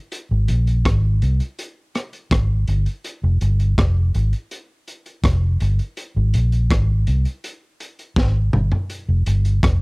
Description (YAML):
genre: roots reggae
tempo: 82 BPM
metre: 4/4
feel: straight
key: unclear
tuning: A4 = 440 Hz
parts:
  - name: crunchy breakbeat drum kit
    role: drums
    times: 0.1-9.8 s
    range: hi-hat, kick drum, rim click, snare drum, toms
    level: -21 LUFS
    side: equal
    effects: none
  - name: vintage muted fingered electric bass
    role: bass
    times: 0.3-9.8 s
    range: F1 to C2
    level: -17 LUFS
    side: equal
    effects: none
room: little or no reverb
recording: dry, close 1970s-style studio recording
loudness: -17 LUFS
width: side -40 dB against mid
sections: 0.0-9.8 A section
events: drum fill 8.2-8.9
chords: none